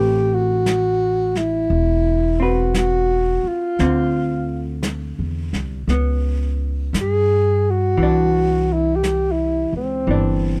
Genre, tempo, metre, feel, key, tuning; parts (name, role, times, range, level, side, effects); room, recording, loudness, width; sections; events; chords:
jazz ballad; 57 BPM; 4/4; swing 66% on 8ths; A4 = 439 Hz
breathy alto saxophone; melody; 0.0-10.6 s; C4 to Ab4; -21 LUFS; equal
vintage hollow-body jazz guitar; accompaniment; 0.0-10.6 s; D3 to B4; -26 LUFS; equal
upright bass; bass; 0.0-10.6 s; E1 to G2; -24 LUFS; equal
jazz brush drum kit; drums; 0.7-10.6 s; brushed snare drum, hi-hat, snare drum; -31 LUFS; equal
small room reverb; dry, close 1970s-style studio recording; -19 LUFS; mono
0.0-10.6 A section
0.0 Amadd9; 3.8 Dm9; 5.9 G(#11)/C#; 8.0 Cadd9